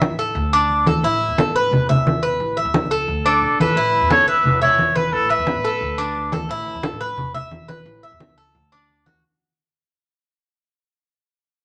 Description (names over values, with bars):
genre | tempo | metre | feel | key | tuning
latin, Cuban son and guajira | 176 BPM | 4/4 | straight | A major | A4 = 439 Hz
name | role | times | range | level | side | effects
Cuban tres | arpeggios | 0.0-9.2 s | D4 to E5 | -22 LUFS | equal | none
upright bass | bass | 0.0-9.2 s | E1 to A2 | -31 LUFS | equal | none
congas | percussion | 0.0-9.2 s | none | -24 LUFS | equal | none
clear trumpet | melody | 3.3-6.3 s | A4 to E5 | -21 LUFS | equal | none
room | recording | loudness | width
wet club reverb, RT60 0.9 s | none | -19 LUFS | mono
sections
0.0-3.8 A section; 3.8-9.2 B section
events
fade-out 3.8-9.2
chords
0.4 D5; 1.0 Asus2; 1.7 E5; 2.4 Aadd9; 3.1 D5; 3.8 Asus2; 4.5 E5; 5.1 Asus2; 5.8 D5; 6.5 Asus2; 7.2 E5; 7.9 Aadd9; 8.5 D